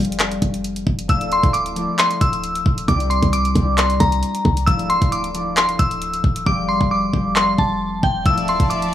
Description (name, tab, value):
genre	hip hop, trap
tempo	134 BPM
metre	4/4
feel	half-time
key	D minor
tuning	A4 = 440 Hz
part	concert harp	accompaniment	0.0-8.9 s	F3 to G4	-24 LUFS	left 2 dB	low-pass filter
part	clean 808-style bass	bass	0.0-8.9 s	C1 to C2	-23 LUFS	equal	none
part	trap drum kit	drums	0.0-8.9 s	handclaps, hi-hat, kick drum	-20 LUFS	equal	none
part	glassy synth bell	melody	1.1-8.9 s	G5 to E6	-20 LUFS	equal	chorus, low-pass filter, tape echo
part	clear symphonic string section	sustained chords	8.3-8.9 s	F3 to A5	-25 LUFS	equal	none
room	digital ambience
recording	dry, gritty hardware recording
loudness	-16 LUFS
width	side -12 dB against mid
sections	0.0-8.9 A section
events	break 0.0-1.1; hi-hats muted 6.5-8.3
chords	0.0 Fsus2; 1.1 Dmadd9; 2.9 Cadd9; 4.7 Dmadd9; 6.5 Fsus2; 8.3 Dmadd9